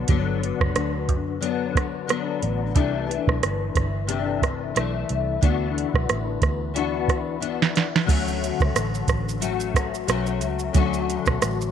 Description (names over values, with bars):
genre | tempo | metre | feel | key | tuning
indie pop, bedroom pop | 90 BPM | 4/4 | swing 55% on 16ths | D major | A4 = 438 Hz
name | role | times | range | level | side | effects
nylon-string guitar | accompaniment | 0.0-11.7 s | C3 to F#4 | -26 LUFS | left 10 dB | ensemble chorus, warbly pitch drift
vintage muted fingered electric bass | bass | 0.0-11.7 s | F#1 to F#2 | -28 LUFS | right 1 dB | none
soft vintage rhythm box | drums | 0.1-11.7 s | crash cymbal, hi-hat, kick drum, rim click, shaker, snare drum | -23 LUFS | right 4 dB | none
room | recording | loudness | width
light reverb | 1960s-style stereo | -21 LUFS | side -8 dB against mid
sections
0.0-8.1 A section; 8.1-11.7 A section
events
drum fill 7.4-8.1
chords
0.0 Gmaj7; 2.8 C69; 5.4 D69; 8.1 Dmaj7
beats
| 0.09 0.76 1.42 2.09 | 2.76 3.42 4.09 4.75 | 5.42 6.09 6.75 7.42 | 8.09 8.75 9.42 10.09 | 10.75 11.42